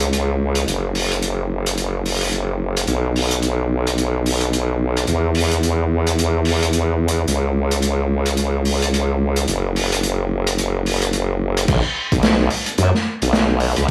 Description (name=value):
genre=glitch hop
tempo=109 BPM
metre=4/4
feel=swing 59% on 16ths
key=unclear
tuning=A4 = 440 Hz
part: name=formant-sweep wobble bass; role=bass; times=0.0-13.9 s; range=F#1 to F#2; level=-20 LUFS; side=equal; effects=chorus, tube saturation
part: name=swinging big-band drum kit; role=drums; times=0.0-13.9 s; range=crash cymbal, hi-hat, rim click, snare drum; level=-24 LUFS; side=equal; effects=none
part: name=electronic kick drum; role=drums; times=11.7-13.9 s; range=none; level=-21 LUFS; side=equal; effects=none
room=little or no reverb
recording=small room ambience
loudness=-19 LUFS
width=mono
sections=0.0-11.7 A section; 11.7-13.9 B section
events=drop 11.7-13.9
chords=none